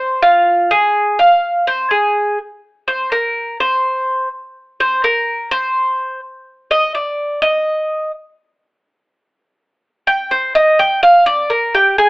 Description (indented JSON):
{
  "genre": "latin",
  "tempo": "125 BPM",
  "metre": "4/4",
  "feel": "straight",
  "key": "unclear",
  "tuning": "A4 = 440 Hz",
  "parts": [
    { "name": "Cuban tres", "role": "solo", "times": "0.0-12.1 s", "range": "F4 to G5", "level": "-12 LUFS", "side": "equal", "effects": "none" }
  ],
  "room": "moderate studio reverb, RT60 0.8 s",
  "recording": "telephone sound",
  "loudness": "-13 LUFS",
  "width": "side -23 dB against mid",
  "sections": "0.0-2.4 A section; 2.4-12.1 B section",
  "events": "Cuban tres solo 2.4-12.1",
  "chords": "none"
}